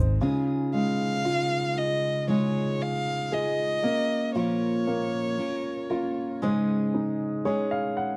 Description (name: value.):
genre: pop.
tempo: 58 BPM.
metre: 4/4.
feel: straight.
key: Db major.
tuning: A4 = 440 Hz.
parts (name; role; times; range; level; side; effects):
clear baby grand piano; accompaniment; 0.0-8.2 s; Db3 to Gb5; -30 LUFS; equal; none.
picked steel-string acoustic guitar; arpeggios; 0.0-8.2 s; Ab2 to C5; -33 LUFS; equal; slapback echo.
warm violin; melody; 0.7-6.4 s; Db5 to F5; -32 LUFS; equal; slapback echo.
room: light reverb.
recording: dry, close 1970s-style studio recording.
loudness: -27 LUFS.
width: mono.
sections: 0.2-8.2 A section.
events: grand piano fill 6.9-8.2.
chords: 0.2 Dbadd9; 3.8 Bbm; 6.4 Absus4.